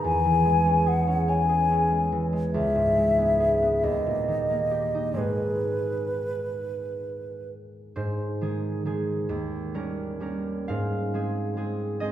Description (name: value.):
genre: classical, romantic duo for flute and harp.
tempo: 42-48 BPM (dotted quarters).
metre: 6/8.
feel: rubato.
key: G# minor, Ab major from 8.0 s.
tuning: A4 = 440 Hz.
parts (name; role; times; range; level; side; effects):
mellow hollow concert flute; melody; 0.0-7.5 s; B4 to G#5; -24 LUFS; left 1 dB; none.
concert harp; accompaniment; 0.0-12.1 s; C#2 to F5; -26 LUFS; right 1 dB; none.
room: wet recital hall reverb, RT60 1.5 s.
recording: recorded in a church or concert hall.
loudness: -23 LUFS.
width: side -11 dB against mid.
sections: 0.0-8.0 A section; 8.0-12.1 B section.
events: none.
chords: 0.0 C#m/E; 2.5 C#m7; 3.8 D#; 5.2 G#m; 9.3 Eb7; 10.7 Ab.